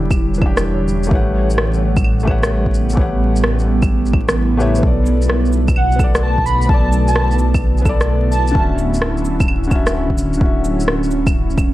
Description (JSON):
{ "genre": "future garage", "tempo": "129 BPM", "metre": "4/4", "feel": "swing 67% on 16ths", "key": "unclear", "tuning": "A4 = 440 Hz", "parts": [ { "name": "felt-muted upright piano", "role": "accompaniment", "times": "0.0-11.7 s", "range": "D3 to F#5", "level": "-23 LUFS", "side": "left 2 dB", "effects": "sidechain pumping, tape echo" }, { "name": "ethereal airy pad", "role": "sustained chords", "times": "0.0-11.7 s", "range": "C#3 to F#5", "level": "-22 LUFS", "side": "right 2 dB", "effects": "ensemble chorus, built-in reverb, phaser, sidechain pumping" }, { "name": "dark detuned saw bass", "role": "bass", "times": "0.0-11.7 s", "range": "D1 to B1", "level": "-18 LUFS", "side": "equal", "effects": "sidechain pumping" }, { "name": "electronic kick drum", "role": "drums", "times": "0.1-11.7 s", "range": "none", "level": "-17 LUFS", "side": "equal", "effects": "overdrive" }, { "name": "electronic shaker, claves, rim click and cabasa", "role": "drums", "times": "0.1-11.7 s", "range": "none", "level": "-22 LUFS", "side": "equal", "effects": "overdrive" }, { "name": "airy dreamy lead", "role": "melody", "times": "5.8-8.6 s", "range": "F#5 to B5", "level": "-22 LUFS", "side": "right 1 dB", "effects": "chorus, cassette tape, tape echo" } ], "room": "light reverb", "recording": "vinyl crackle", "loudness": "-13 LUFS", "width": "side -15 dB against mid", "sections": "0.0-11.7 A section", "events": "none", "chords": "0.0 Em7; 1.1 A13; 4.8 Bm7; 8.6 Dmaj9" }